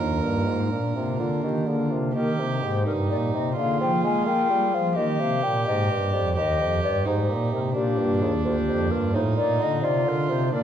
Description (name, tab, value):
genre	classical, baroque-style sonata movement with continuo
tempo	86 BPM (dotted quarters)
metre	12/8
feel	straight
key	Eb major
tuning	A4 = 438 Hz
part	mellow hollow baroque flute	melody	0.0-10.6 s	D4 to Ab5	-27 LUFS	left 5 dB	none
part	warm violin	second line	0.0-10.6 s	D4 to Bb4	-30 LUFS	right 6 dB	none
part	pipe organ, principal	accompaniment	0.0-10.6 s	D2 to Ab4	-25 LUFS	equal	none
part	clear bassoon	bass	0.0-10.6 s	D2 to Bb3	-29 LUFS	right 2 dB	none
room	wet recital hall reverb, RT60 1.8 s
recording	dark, warm production, vinyl crackle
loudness	-21 LUFS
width	side -9 dB against mid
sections	0.0-2.2 A section; 2.2-10.6 A section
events	none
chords	0.0 Bbsus4; 0.7 Bb; 2.2 Eb; 3.6 Bb7/D; 5.0 Eb; 7.8 Bb; 9.1 F7/A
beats	0.71 1.44 | 2.16 2.87 3.57 4.28 | 4.98 5.67 6.37 7.06 | 7.76 8.46 9.15 9.84 | 10.53